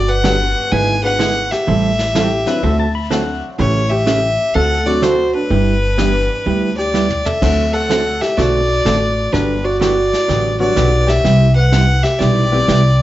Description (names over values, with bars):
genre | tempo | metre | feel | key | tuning
country, western swing | 125 BPM | 4/4 | swing 66% on 8ths | G major | A4 = 439 Hz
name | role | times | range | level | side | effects
clear fiddle | melody | 0.0-13.0 s | B4 to G#5 | -18 LUFS | left 2 dB | none
felt-muted upright piano | second line | 0.0-13.0 s | D4 to B4 | -21 LUFS | right 2 dB | none
upright bass | bass | 0.0-13.0 s | G1 to D2 | -17 LUFS | equal | none
honky-tonk upright piano | accompaniment | 0.2-12.7 s | E3 to G4 | -24 LUFS | left 3 dB | none
vintage hollow-body jazz guitar | accompaniment | 0.2-12.8 s | C3 to A4 | -20 LUFS | right 4 dB | none
vintage brush drum kit | drums | 0.2-13.0 s | brushed snare drum, crash cymbal, hi-hat, kick drum, snare drum, toms | -26 LUFS | left 1 dB | none
pedal steel guitar | second line | 2.2-3.5 s | G4 to B5 | -24 LUFS | left 3 dB | none
room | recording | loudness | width
moderate club reverb, RT60 0.9 s | nothing above 7.9 kHz | -13 LUFS | side -14 dB against mid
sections
0.0-7.4 A section; 7.4-13.0 B section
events
drum fill 6.9-7.4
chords
0.0 Gmaj7; 0.7 E7/G#; 1.7 Am7; 2.6 D9; 3.6 A7; 4.5 D7; 5.5 G6; 7.4 D7; 9.3 Gmaj7; 11.2 Cmaj7